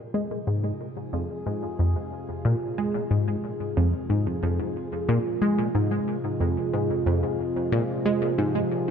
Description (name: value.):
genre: ambient, sequencer-driven space music.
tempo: 91 BPM.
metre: 4/4.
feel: straight.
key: F minor.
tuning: A4 = 440 Hz.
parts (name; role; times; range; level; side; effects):
sweeping resonant pad; sustained chords; 0.1-8.9 s; C3 to Ab4; -29 LUFS; right 1 dB; chorus, phaser.
tight sequenced synth; riff; 0.1-8.6 s; F2 to Ab3; -25 LUFS; equal; chorus, phaser, tape echo.
room: moderate plate reverb, RT60 2.5 s.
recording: echo-heavy mix.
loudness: -24 LUFS.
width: side -7 dB against mid.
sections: 0.0-8.9 A section.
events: fade-in on analog synth pad 0.0-8.9.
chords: 0.0 Fm.